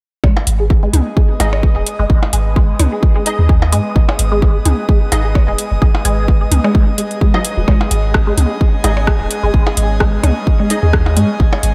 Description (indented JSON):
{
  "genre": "minimal techno",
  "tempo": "129 BPM",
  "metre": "4/4",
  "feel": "swing 55% on 16ths",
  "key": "G# minor",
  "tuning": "A4 = 441 Hz",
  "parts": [
    { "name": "resonant blip pluck", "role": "riff", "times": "0.2-11.5 s", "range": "F#3 to G#4", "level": "-24 LUFS", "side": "equal", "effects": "phaser, subtle chorus, sidechain pumping, diffuse ambient delay" },
    { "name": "punchy sub bass", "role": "bass", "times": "0.2-11.7 s", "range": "D#1 to G#2", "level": "-17 LUFS", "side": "equal", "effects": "sidechain pumping" },
    { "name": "electronic kick drum", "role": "drums", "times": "0.2-11.5 s", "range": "none", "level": "-15 LUFS", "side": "equal", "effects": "none" },
    { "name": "electronic percussion blips and toms", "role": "percussion", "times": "0.2-11.6 s", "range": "none", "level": "-26 LUFS", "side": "equal", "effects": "overdrive, tape echo" },
    { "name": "airy breathy pad", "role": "texture", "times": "0.2-11.7 s", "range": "G#3 to D#6", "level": "-27 LUFS", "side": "equal", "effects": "chorus, sidechain pumping" },
    { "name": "bubbling stepped-filter texture", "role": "texture", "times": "0.5-11.7 s", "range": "B3 to B4", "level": "-35 LUFS", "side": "equal", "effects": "chorus, built-in reverb, sidechain pumping" },
    { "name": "booming analog drum machine", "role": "drums", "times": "0.5-11.7 s", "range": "hi-hat, rim click", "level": "-22 LUFS", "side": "equal", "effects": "none" },
    { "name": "wavetable chord stab", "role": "stabs", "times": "1.4-10.8 s", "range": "D#4 to D#5", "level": "-28 LUFS", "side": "equal", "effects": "ensemble chorus, tape echo" }
  ],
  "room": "light reverb",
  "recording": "none",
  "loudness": "-14 LUFS",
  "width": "mono",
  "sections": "0.2-11.7 A section",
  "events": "none",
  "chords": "0.2 G#5",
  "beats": "| 0.24 0.70 1.17 1.63 | 2.10 2.56 3.03 3.49 | 3.96 4.42 4.89 5.35 | 5.82 6.28 6.75 7.21 | 7.68 8.14 8.61 9.07 | 9.54 10.00 10.47 10.93 | 11.40"
}